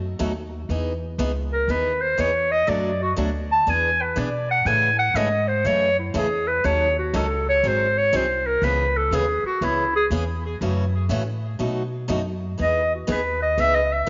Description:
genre	acoustic string swing (jazz manouche)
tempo	121 BPM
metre	4/4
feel	swing 65% on 8ths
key	E major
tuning	A4 = 440 Hz
part	upright bass	bass	0.0-14.1 s	G#1 to B2	-29 LUFS	equal	none
part	picked steel-string acoustic guitar	accompaniment	0.2-14.1 s	B2 to A4	-31 LUFS	equal	none
part	clear clarinet	melody	1.5-14.1 s	E4 to A5	-23 LUFS	equal	tape echo
room	moderate echo chamber reverb, RT60 2.1 s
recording	nothing above 7.5 kHz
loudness	-22 LUFS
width	mono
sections	0.7-14.1 A section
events	clarinet solo 0.7-14.1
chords	0.0 B7; 0.7 Emaj7; 2.7 Bm7; 3.7 E7; 4.7 Amaj7; 6.6 D#m7b5; 7.6 G#7; 8.6 C#m7; 10.6 F#m7; 11.6 B7; 12.6 Emaj7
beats	0.19 | 0.69 1.19 1.68 2.18 | 2.68 3.17 3.67 4.16 | 4.66 5.16 5.65 6.15 | 6.64 7.14 7.63 8.13 | 8.62 9.12 9.61 10.11 | 10.60 11.10 11.59 12.09 | 12.58 13.08 13.57 14.07

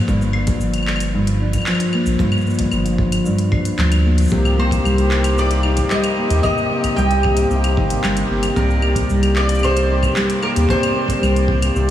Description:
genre	folktronica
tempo	113 BPM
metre	4/4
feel	straight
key	C minor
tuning	A4 = 445 Hz
part	nylon-string guitar	arpeggios	0.0-11.9 s	G2 to Eb4	-20 LUFS	left 1 dB	tape echo
part	warm sub bass	bass	0.1-11.9 s	G1 to Eb2	-18 LUFS	equal	none
part	kick drum	drums	0.1-11.6 s	none	-24 LUFS	equal	none
part	organic electronic drum kit	drums	0.1-11.9 s	cabasa, claves, handclaps, hi-hat	-26 LUFS	left 1 dB	none
part	accordion	sustained chords	4.3-11.9 s	Eb3 to D5	-23 LUFS	left 1 dB	none
part	mandolin	melody	4.6-11.9 s	Bb4 to G5	-22 LUFS	right 1 dB	tape echo
room	moderate huge ambient reverb, RT60 8.7 s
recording	dreamy mix soaked in reverb, studio reverb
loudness	-15 LUFS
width	side -11 dB against mid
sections	0.0-11.9 A section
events	none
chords	0.0 Gm7; 4.3 Cm7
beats	| 0.07 0.60 1.13 1.66 | 2.19 2.73 3.26 3.79 | 4.32 4.85 5.38 5.91 | 6.44 6.97 7.50 8.04 | 8.57 9.10 9.63 10.16 | 10.69 11.22 11.75

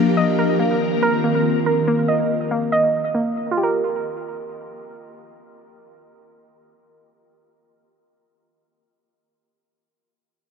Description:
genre	hip hop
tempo	141 BPM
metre	4/4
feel	half-time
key	G minor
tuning	A4 = 439 Hz
part	ethereal airy pad	sustained chords	0.0-1.9 s	Eb3 to Bb4	-20 LUFS	left 1 dB	ensemble chorus, built-in reverb, phaser, low-pass filter
part	soft round pluck	arpeggios	0.0-8.2 s	Bb3 to F5	-21 LUFS	right 2 dB	chorus, low-pass filter, tape echo
room	moderate huge ambient reverb, RT60 6.3 s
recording	nothing above 8.0 kHz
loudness	-17 LUFS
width	side -6 dB against mid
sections	0.0-3.6 A section; 3.6-7.0 B section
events	filter sweep 0.0-3.6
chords	0.2 F7sus4; 3.6 Gm7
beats	| 0.17 0.59 1.02 1.45 | 1.87 2.30 2.72 3.15 | 3.57 4.00 4.42 4.85 | 5.28 5.70 6.13 6.55

